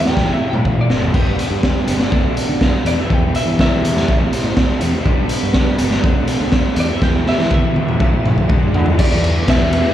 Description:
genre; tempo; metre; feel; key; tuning
indie rock; 122 BPM; 4/4; straight; E minor; A4 = 441 Hz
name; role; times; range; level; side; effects
twelve-string electric guitar; melody; 0.0-9.9 s; G4 to G5; -24 LUFS; left 1 dB; wide subtle chorus, slapback echo
raw garage guitar; riff; 0.0-9.9 s; G2 to F#4; -22 LUFS; right 1 dB; overdrive, slapback echo
growling fingered electric bass; bass; 0.0-9.8 s; G1 to E3; -21 LUFS; equal; overdrive
raw garage drum kit; drums; 0.1-9.9 s; crash cymbal, hi-hat, kick drum, ride cymbal, snare drum, splash cymbal, toms; -15 LUFS; equal; none
tonewheel organ; sustained chords; 1.1-9.9 s; D3 to C5; -31 LUFS; right 2 dB; none
room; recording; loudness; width
light reverb; live gig heard through the venue's PA, club reverb; -13 LUFS; side -11 dB against mid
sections
0.0-9.0 A section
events
clean electric guitar solo 0.0-9.0; drum fill 0.2-1.1, 7.0-9.0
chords
0.2 Am; 1.1 G; 2.1 D; 2.9 Em; 4.1 Am; 5.1 G; 6.0 D; 6.8 Em; 8.0 Am; 8.5 D; 9.0 Em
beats
0.16 0.65 | 1.14 1.63 2.12 2.61 | 3.10 3.59 4.08 4.57 | 5.07 5.56 6.05 6.54 | 7.03 7.52 8.01 8.50 | 8.99 9.48

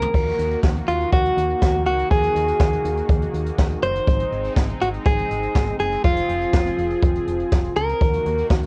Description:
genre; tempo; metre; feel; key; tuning
synth-pop; 122 BPM; 4/4; straight; Eb dorian; A4 = 439 Hz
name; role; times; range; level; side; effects
direct-recorded clean electric guitar; melody; 0.0-8.5 s; F4 to C5; -24 LUFS; equal; none
brassy analog pad; sustained chords; 0.0-8.7 s; Eb3 to Ab4; -34 LUFS; equal; chorus, cassette tape
soft round pluck; arpeggios; 0.0-0.1, 8.0-8.7 s; Eb3 to Gb4; -35 LUFS; equal; chorus, cassette tape
solid FM bass; bass; 0.0-8.7 s; F1 to Eb2; -29 LUFS; equal; none
jazz brush drum kit; drums; 0.0-8.7 s; crash cymbal, hi-hat, kick drum, snare drum, toms; -23 LUFS; equal; none
room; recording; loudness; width
moderate booth ambience, RT60 0.2 s; home recording on cassette; -20 LUFS; mono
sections
0.1-8.7 A section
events
none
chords
0.1 Ebm; 4.1 Ab; 6.0 Fm; 8.0 Ebm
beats
| 0.14 0.63 1.12 1.62 | 2.11 2.60 3.09 3.58 | 4.08 4.57 5.06 5.55 | 6.04 6.54 7.03 7.52 | 8.01 8.50

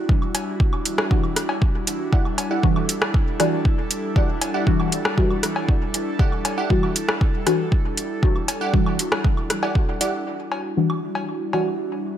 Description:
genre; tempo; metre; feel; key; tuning
dub techno; 118 BPM; 4/4; straight; E minor; A4 = 439 Hz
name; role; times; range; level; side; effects
airy breathy pad; sustained chords; 0.0-12.2 s; G3 to A4; -28 LUFS; right 1 dB; chorus, sidechain pumping
electronic kick drum; drums; 0.1-9.9 s; none; -19 LUFS; equal; overdrive
woodblock and cowbell; percussion; 0.2-11.6 s; none; -31 LUFS; left 2 dB; sidechain pumping on perc, dub echo
deep house drum kit; drums; 0.3-10.1 s; hi-hat, rim click; -25 LUFS; equal; overdrive, low-pass filter on hats, low-pass filter on snare
deep mellow chord stab; stabs; 1.1-11.7 s; E3 to F#4; -25 LUFS; left 1 dB; chorus, phaser, vintage 12-bit sampler grit, sidechain pumping, dub echo
wavetable chord stab; riff; 2.1-10.1 s; E4 to F#5; -29 LUFS; right 3 dB; sidechain pumping, dub echo
room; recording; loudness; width
light reverb, digital ambience; none; -19 LUFS; side -10 dB against mid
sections
0.0-10.3 A section; 10.3-12.2 B section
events
none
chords
0.0 Em9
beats
| 0.09 0.60 1.11 1.62 | 2.13 2.63 3.14 3.65 | 4.16 4.67 5.18 5.69 | 6.19 6.70 7.21 7.72 | 8.23 8.74 9.24 9.75 | 10.26 10.77 11.28 11.79

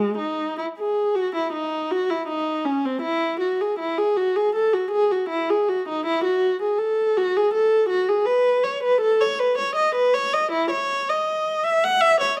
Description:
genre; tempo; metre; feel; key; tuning
classical, baroque-style suite movement for unaccompanied viola; 80 BPM; 4/4; rubato; E major; A4 = 439 Hz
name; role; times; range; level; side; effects
warm viola; solo; 0.0-12.4 s; G#3 to F#5; -22 LUFS; equal; none
room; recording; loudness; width
light reverb; none; -22 LUFS; mono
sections
0.0-12.4 A section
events
none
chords
none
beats
0.77 1.52 2.27 | 3.03 3.79 4.54 5.30 | 6.05 6.79 7.53 8.27 | 9.02 9.77 10.52 11.27 | 12.02

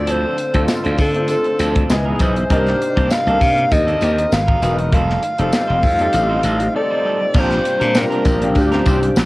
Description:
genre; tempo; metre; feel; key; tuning
polished 1980s jazz-funk pop; 99 BPM; 4/4; swing 54% on 16ths; Bb major; A4 = 438 Hz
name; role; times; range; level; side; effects
breathy alto saxophone; melody; 0.0-9.2 s; G4 to F5; -19 LUFS; equal; none
warm concert grand piano; accompaniment; 0.0-9.2 s; Cb4 to Bb4; -22 LUFS; left 2 dB; ensemble chorus, cassette tape, plate reverb
warm studio string section; sustained chords; 0.0-9.3 s; Bb2 to Eb5; -28 LUFS; equal; none
glassy slap bass; bass; 0.0-9.3 s; E1 to D3; -19 LUFS; equal; none
electric guitar at the edge of break-up; riff; 0.1-9.2 s; Eb3 to C5; -26 LUFS; right 3 dB; wide subtle chorus, cassette tape
crisp fusion drum kit; drums; 0.1-9.3 s; crash cymbal, hi-hat, kick drum, snare drum; -19 LUFS; equal; cassette tape
tambourine; percussion; 0.7-9.3 s; none; -36 LUFS; left 4 dB; none
room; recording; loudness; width
moderate booth ambience, RT60 0.2 s; home recording on cassette; -14 LUFS; side -20 dB against mid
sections
0.0-7.3 A section; 7.3-9.3 B section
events
break 6.7-7.3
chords
0.0 Dm7; 1.9 Dbm9; 2.5 Cm9; 4.3 Abm7; 4.9 F9; 7.3 Bb69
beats
| 0.08 0.69 1.29 1.90 | 2.50 3.11 3.72 4.32 | 4.93 5.53 6.14 6.74 | 7.35 7.95 8.56 9.16

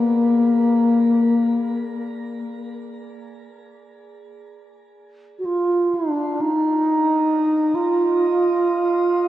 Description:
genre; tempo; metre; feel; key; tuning
world meditative, free-time meditation music; free time; none; none; unclear; A4 = 440 Hz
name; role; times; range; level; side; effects
reedy bass flute; melody; 0.0-9.3 s; Bb3 to Gb4; -18 LUFS; equal; shimmer reverb, ping-pong delay
bronze singing bowl; texture; 0.0-4.2 s; Ab4 to D5; -42 LUFS; right 5 dB; shimmer reverb
room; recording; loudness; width
wet church reverb, RT60 3.6 s; worn, warbling old tape, cassette tape, warbly pitch drift; -17 LUFS; side -13 dB against mid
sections
0.0-9.3 A section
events
none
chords
none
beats
free time

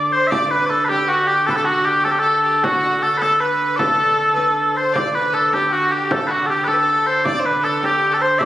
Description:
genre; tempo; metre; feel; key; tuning
medieval dance; 104 BPM (dotted quarters); 6/8; straight; D mixolydian; A4 = 440 Hz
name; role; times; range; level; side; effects
mellow small bagpipes; melody; 0.0-8.5 s; F#4 to E5; -16 LUFS; equal; none
warm hurdy-gurdy; drone; 0.0-8.5 s; D3; -28 LUFS; right 2 dB; none
rich fiddle; second line; 0.1-8.5 s; F#4 to D5; -24 LUFS; left 2 dB; none
frame drum; percussion; 0.3-8.5 s; none; -28 LUFS; right 1 dB; none
room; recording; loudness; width
wet concert hall reverb, RT60 1.8 s; recorded on a phone in the room, club reverb; -15 LUFS; side -13 dB against mid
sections
0.3-8.5 A section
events
none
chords
none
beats
| 0.32 0.90 | 1.48 2.06 | 2.63 3.21 | 3.79 4.37 | 4.95 5.52 | 6.10 6.68 | 7.25 7.83 | 8.41

